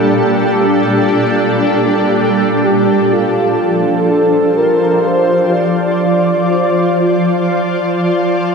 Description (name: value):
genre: ambient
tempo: free time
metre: none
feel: none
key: unclear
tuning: A4 = 440 Hz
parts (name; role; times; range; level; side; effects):
- shimmering ambient pad; sustained chords; 0.0-8.5 s; Bb2 to D5; -12 LUFS; equal; chorus, built-in reverb
- warm velvety synth lead; melody; 2.6-8.0 s; F4 to D5; -16 LUFS; equal; chorus, analog delay
room: wet lush hall reverb, RT60 2.8 s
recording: dreamy mix soaked in reverb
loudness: -11 LUFS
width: side -5 dB against mid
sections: 0.0-2.6 A section; 2.6-8.5 B section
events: none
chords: 0.0 Gm/Bb; 2.6 F69